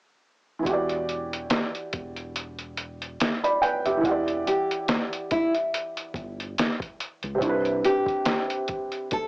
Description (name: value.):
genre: lo-fi hip hop.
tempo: 71 BPM.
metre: 4/4.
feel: swing 56% on 16ths.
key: E minor.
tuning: A4 = 440 Hz.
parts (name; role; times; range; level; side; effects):
felt-muted upright piano; accompaniment; 0.6-9.3 s; C3 to B5; -26 LUFS; right 1 dB; cassette tape.
deep dub fingered electric bass; bass; 0.7-7.8 s; E1 to C#2; -37 LUFS; equal; transformer saturation.
lo-fi sampler-style drum kit; drums; 0.7-9.3 s; hi-hat, kick drum, snare drum; -27 LUFS; equal; cassette tape.
nylon-string guitar; melody; 4.5-9.3 s; E4 to A4; -25 LUFS; equal; cassette tape.
room: moderate studio reverb, RT60 0.6 s.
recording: home recording on cassette, small speaker sound.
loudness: -24 LUFS.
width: side -24 dB against mid.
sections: 0.7-4.0 A section; 4.0-9.3 B section.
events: kick muted 2.3-4.0.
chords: 0.7 Em9; 7.4 Cmaj9.